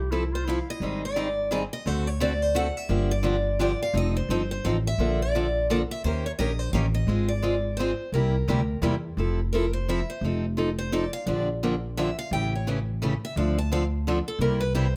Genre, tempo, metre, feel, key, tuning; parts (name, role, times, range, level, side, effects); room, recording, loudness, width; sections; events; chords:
acoustic string swing (jazz manouche); 172 BPM; 3/4; swing 60% on 8ths; F major; A4 = 438 Hz
breathy clarinet; second line; 0.0-0.8 s; E4 to G4; -36 LUFS; equal
upright bass; bass; 0.0-15.0 s; F1 to E2; -30 LUFS; equal
picked steel-string acoustic guitar; accompaniment; 0.1-14.9 s; C3 to Bb4; -30 LUFS; equal
picked steel-string acoustic guitar; melody; 0.3-15.0 s; A4 to A5; -32 LUFS; equal
light reverb; -26 LUFS; mono
0.8-9.2 A section; 9.2-15.0 B section
steel-string acoustic guitar solo 9.2-15.0
0.0 Fmaj7; 0.8 Abmaj7; 1.9 D7; 2.9 Gm7; 3.9 F7; 5.0 Bbmaj7; 6.0 Eb7; 7.1 Ab6; 8.1 C7; 9.2 Fmaj7; 10.2 F7; 11.3 Bb6; 12.3 A7; 13.4 Dm7; 14.4 C7